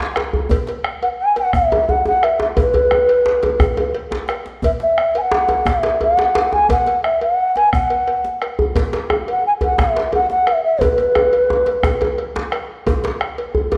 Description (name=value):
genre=west african traditional, West African drum ensemble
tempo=116 BPM (dotted quarters)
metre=12/8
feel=straight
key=E major pentatonic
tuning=A4 = 439 Hz
part: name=djembe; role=percussion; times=0.0-13.8 s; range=none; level=-23 LUFS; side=equal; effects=none
part: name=bombo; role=percussion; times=0.2-13.4 s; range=none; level=-26 LUFS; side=equal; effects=none
part: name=cowbell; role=percussion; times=0.2-13.8 s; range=none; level=-29 LUFS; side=equal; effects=none
part: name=djembe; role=percussion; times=0.2-13.8 s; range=none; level=-29 LUFS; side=equal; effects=none
part: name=mellow bass bansuri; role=melody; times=1.0-12.2 s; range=B4 to G#5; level=-18 LUFS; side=equal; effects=none
room=light reverb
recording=worn, warbling old tape, cassette tape, warbly pitch drift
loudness=-17 LUFS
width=mono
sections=0.0-12.9 A section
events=drum fill 4.1-4.6, 10.8-12.9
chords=none